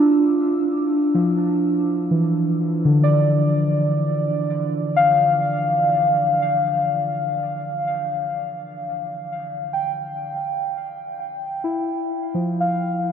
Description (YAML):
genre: ambient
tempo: 62 BPM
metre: 4/4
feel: straight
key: unclear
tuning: A4 = 440 Hz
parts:
  - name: muted felt-like synth keys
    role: solo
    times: 0.0-13.1 s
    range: D3 to G5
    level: -18 LUFS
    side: equal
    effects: chorus, tape echo
room: wet huge ambient reverb, RT60 8.2 s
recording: none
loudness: -18 LUFS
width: side -8 dB against mid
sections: 0.0-10.3 A section; 10.3-13.1 B section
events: none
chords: 0.0 Dmadd11